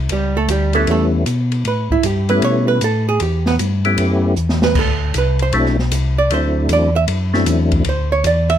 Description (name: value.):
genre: soul jazz organ trio.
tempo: 155 BPM.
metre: 4/4.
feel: swing 66% on 8ths.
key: unclear.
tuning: A4 = 439 Hz.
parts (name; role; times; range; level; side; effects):
mellow tonewheel organ; bass; 0.0-8.6 s; B1 to B2; -18 LUFS; left 1 dB; overdrive, chorus vibrato, slow rotary speaker.
archtop guitar, miked and amplified; accompaniment; 0.1-8.6 s; G3 to E5; -18 LUFS; right 5 dB; none.
open jazz drum kit; drums; 0.1-8.6 s; crash cymbal, hi-hat, kick drum, ride cymbal, snare drum; -23 LUFS; equal; none.
percussive tonewheel organ; melody; 0.7-7.8 s; F#3 to G4; -18 LUFS; left 2 dB; slow rotary speaker, chorus vibrato.
room: light reverb.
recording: close, detailed microphones.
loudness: -14 LUFS.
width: side -10 dB against mid.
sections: 0.0-8.6 A section.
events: hollow-body jazz guitar solo 0.0-8.6; drum fill 4.4-4.8.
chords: 0.0 A9; 4.8 D9.